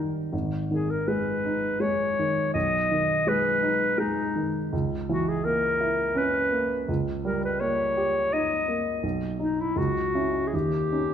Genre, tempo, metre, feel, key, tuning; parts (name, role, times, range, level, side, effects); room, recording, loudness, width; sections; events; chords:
classical, romantic duo for clarinet and grand piano; 82 BPM; 3/4; rubato; G# minor; A4 = 440 Hz
bright clarinet; melody; 0.0-11.1 s; D#4 to D#5; -26 LUFS; left 1 dB
warm baby grand piano; accompaniment; 0.0-11.1 s; G#1 to G4; -27 LUFS; right 1 dB
moderate recital hall reverb, RT60 1.5 s; -23 LUFS; side -9 dB against mid
0.0-11.1 A section
0.3 G#m; 2.5 G#m/B; 4.7 A#dim/C#; 6.9 D#7/C#; 9.0 Badd11; 9.8 C#m; 10.5 D#7